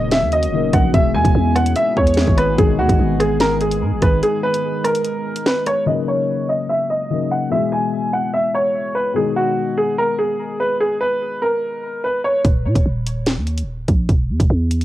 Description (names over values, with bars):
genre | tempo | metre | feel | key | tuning
hip hop, drill | 146 BPM | 4/4 | half-time | G# minor | A4 = 440 Hz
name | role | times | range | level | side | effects
clear upright piano | melody | 0.0-12.4 s | F#4 to G#5 | -19 LUFS | right 1 dB | low-pass filter, cassette tape, tape echo
dark concert grand piano | accompaniment | 0.0-12.5 s | B2 to A#4 | -24 LUFS | left 7 dB | low-pass filter
deep dark ambient pad | sustained chords | 0.0-5.8 s | D#3 to G#4 | -27 LUFS | right 1 dB | chorus, built-in reverb
growling 808-style bass | bass | 0.0-4.2, 12.4-14.8 s | D#1 to A#2 | -19 LUFS | right 1 dB | none
drill drum kit | drums | 0.1-5.8, 12.4-14.8 s | hi-hat, kick drum, rim click, snare drum | -18 LUFS | equal | none
room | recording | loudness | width
little or no reverb | home recording on cassette | -16 LUFS | side -14 dB against mid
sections
0.0-5.9 A section; 5.9-12.4 B section; 12.4-14.8 C section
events
break 4.2-5.9; filter sweep 5.9-12.4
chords
0.0 D#m7; 0.9 E; 2.6 G#m; 5.9 D#m7; 7.5 E; 9.2 G#m; 12.4 D#5; 14.1 N.C.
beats
0.12 0.53 | 0.94 1.35 1.76 2.17 | 2.58 3.00 3.41 3.82 | 4.23 4.64 5.05 5.46 | 5.87 6.28 6.69 7.10 | 7.51 7.93 8.34 8.75 | 9.16 9.57 9.98 10.39 | 10.80 11.21 11.62 12.04 | 12.45 12.86 13.27 13.68 | 14.09 14.50